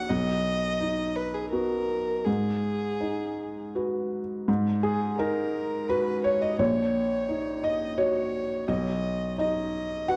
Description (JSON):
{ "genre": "neoclassical piano and strings", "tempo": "84 BPM", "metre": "3/4", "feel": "uneven beats, rubato", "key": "G# minor", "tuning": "A4 = 440 Hz", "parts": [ { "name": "rich violin", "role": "melody", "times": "0.0-10.2 s", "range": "G#4 to F#5", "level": "-34 LUFS", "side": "equal", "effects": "none" }, { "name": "felt-muted upright piano", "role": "accompaniment", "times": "0.0-10.2 s", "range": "A#1 to F#5", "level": "-29 LUFS", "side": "equal", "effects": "none" } ], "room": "moderate recital hall reverb, RT60 1.4 s", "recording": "dark, warm production", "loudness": "-28 LUFS", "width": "mono", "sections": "0.0-4.5 A section; 4.5-10.2 B section", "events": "none", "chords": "0.1 B; 2.3 G#m7; 6.6 D#m7/A#; 8.7 B" }